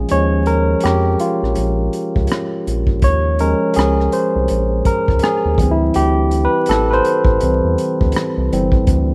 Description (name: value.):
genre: R&B, neo-soul.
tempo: 82 BPM.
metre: 4/4.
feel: swing 60% on 16ths.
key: Eb mixolydian.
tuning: A4 = 436 Hz.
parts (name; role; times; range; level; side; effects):
barky tine electric piano; accompaniment; 0.0-9.1 s; E3 to Db5; -18 LUFS; equal; none.
round analog bass; bass; 0.0-9.1 s; G1 to F2; -20 LUFS; equal; none.
crunchy breakbeat drum kit; drums; 0.1-9.1 s; hi-hat, kick drum, rim click; -22 LUFS; equal; none.
room: light reverb, studio reverb.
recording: rough home demo mix, vinyl crackle.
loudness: -16 LUFS.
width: mono.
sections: 0.0-9.1 A section.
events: tine electric piano solo 0.0-9.1.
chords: 0.0 Eb9sus4; 5.6 D9sus4.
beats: | 0.09 0.82 1.56 2.29 | 3.02 3.75 4.48 5.21 | 5.95 6.68 7.41 8.14 | 8.87.